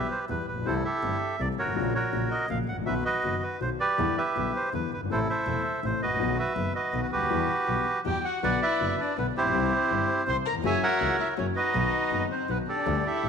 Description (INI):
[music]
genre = tango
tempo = 162 BPM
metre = 3/4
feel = rubato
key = unclear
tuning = A4 = 440 Hz
[part]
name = bandoneon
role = melody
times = 0.0-13.3 s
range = E4 to C6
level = -27 LUFS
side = right 2 dB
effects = none
[part]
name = dark concert grand piano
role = accompaniment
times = 0.0-13.3 s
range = E1 to G4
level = -32 LUFS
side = left 9 dB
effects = none
[part]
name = clear double bass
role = bass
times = 0.0-13.3 s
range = E1 to E2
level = -34 LUFS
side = right 4 dB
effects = none
[part]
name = warm violin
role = second line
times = 8.1-13.3 s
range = B3 to C5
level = -32 LUFS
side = left 8 dB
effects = none
[sound]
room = moderate echo chamber reverb, RT60 1.8 s, small room ambience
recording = 1960s-style stereo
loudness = -25 LUFS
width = side -6 dB against mid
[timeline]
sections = 0.0-13.3 A section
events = none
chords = 0.0 Em; 0.7 C6; 1.8 F#/A#; 2.9 B; 4.0 Em7; 5.1 Am; 6.2 B; 7.3 Emadd9; 8.4 Bm; 9.5 C; 10.6 F#7; 11.7 B